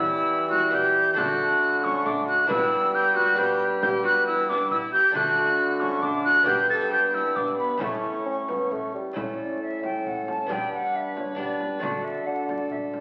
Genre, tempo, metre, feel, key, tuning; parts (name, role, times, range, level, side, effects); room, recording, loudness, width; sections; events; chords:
classical, renaissance-style consort dance; 135 BPM; 3/4; straight; A mixolydian; A4 = 436 Hz
mellow silver concert flute; melody; 0.0-13.0 s; C#5 to A6; -26 LUFS; equal
warm viola; second line; 0.0-13.0 s; B3 to B4; -34 LUFS; equal
lute; accompaniment; 0.0-13.0 s; G2 to B4; -35 LUFS; equal
mellow bassoon; accompaniment; 0.0-13.0 s; G3 to D4; -33 LUFS; equal
clear trombone; bass; 0.0-13.0 s; G2 to G3; -36 LUFS; equal
frame drum; percussion; 0.5-13.0 s; -42 LUFS; equal
wet recital hall reverb, RT60 1.4 s; very old 78 rpm record, vinyl crackle; -24 LUFS; mono
0.0-9.2 A section; 9.2-13.0 B section
0.0 Em; 1.2 D; 2.5 G; 5.1 D; 6.5 G; 7.8 A; 10.5 G; 11.8 D